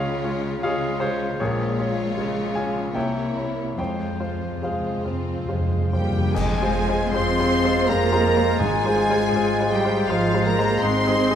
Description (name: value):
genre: classical, romantic movement for piano and orchestra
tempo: 66-84 BPM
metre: 3/4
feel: rubato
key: F minor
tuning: A4 = 440 Hz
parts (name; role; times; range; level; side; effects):
- bright grand piano; melody; 0.0-11.4 s; Bb1 to Ab5; -24 LUFS; left 2 dB; none
- warm studio violin section; melody; 0.0-11.4 s; C5 to C6; -30 LUFS; left 4 dB; none
- clear studio violin section; second line; 0.0-11.4 s; E4 to C6; -33 LUFS; left 2 dB; none
- warm studio viola section; accompaniment; 0.0-11.4 s; Ab3 to C5; -28 LUFS; right 2 dB; none
- rich studio cello section; bass; 0.0-11.4 s; F2 to C4; -29 LUFS; right 1 dB; none
- cymbal swell, clash cymbals and concert bass drum; percussion; 3.8-7.8 s; none; -32 LUFS; right 1 dB; none
- timpani; percussion; 3.8-9.7 s; F2 to Ab2; -28 LUFS; equal; none
- silver concert flute; second line; 5.9-11.4 s; F5 to C6; -31 LUFS; left 1 dB; none
- mellow French horn section; sustained chords; 5.9-11.4 s; F3 to C4; -29 LUFS; left 4 dB; none
- bright clarinet; second line; 6.4-11.4 s; Eb4 to F4; -32 LUFS; equal; none
- mellow bassoon; accompaniment; 6.4-11.4 s; Ab3; -30 LUFS; right 4 dB; none
- rich studio double bass section; bass; 6.4-11.4 s; Ab1 to F2; -28 LUFS; right 4 dB; none
room: moderate scoring stage reverb, RT60 2.0 s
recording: none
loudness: -20 LUFS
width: side -9 dB against mid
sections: 0.0-6.4 A section; 6.4-11.4 B section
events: timpani fill 3.8-6.4; band accent 6.4-7.1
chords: 0.0 Db; 1.4 Bbm7; 3.0 C7b9; 3.8 Fm; 8.6 Fm/Ab; 10.8 Ab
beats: 0.62 | 1.40 2.17 2.95 | 3.78 4.63 5.50 | 6.36 7.13 7.88 | 8.60 9.36 10.09 | 10.82